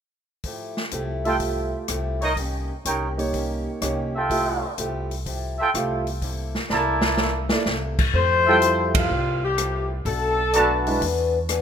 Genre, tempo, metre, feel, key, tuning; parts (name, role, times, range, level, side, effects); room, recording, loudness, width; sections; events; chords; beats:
jazz, big band swing; 125 BPM; 4/4; swing 69% on 8ths; F major; A4 = 440 Hz
picked old ladder-braced acoustic guitar; accompaniment; 0.4-11.6 s; B2 to A4; -31 LUFS; left 3 dB
swinging big-band drum kit; drums; 0.4-11.6 s; crash cymbal, hi-hat, kick drum, ride cymbal, rim click, snare drum; -27 LUFS; equal
upright bass; bass; 0.9-11.6 s; B1 to F2; -28 LUFS; equal
warm concert grand piano; accompaniment; 1.3-11.0 s; G3 to F5; -27 LUFS; right 3 dB
dark trumpet section; stabs; 1.3-11.0 s; Eb4 to A5; -24 LUFS; right 2 dB
warm saxophone section; melody; 8.2-11.0 s; F4 to C5; -21 LUFS; left 3 dB
light reverb, small room ambience; rough home demo mix; -21 LUFS; side -8 dB against mid
0.4-8.1 A section; 8.1-11.6 B section
drum fill 6.7-7.7; band accent 8.9
0.4 Fmaj9; 6.2 C13; 8.1 Fmaj9; 10.1 Bm7; 11.0 E7
| 0.44 0.92 1.41 1.89 | 2.37 2.85 3.33 3.81 | 4.29 4.77 5.25 5.74 | 6.22 6.70 7.18 7.66 | 8.14 8.62 9.10 9.58 | 10.06 10.54 11.02 11.50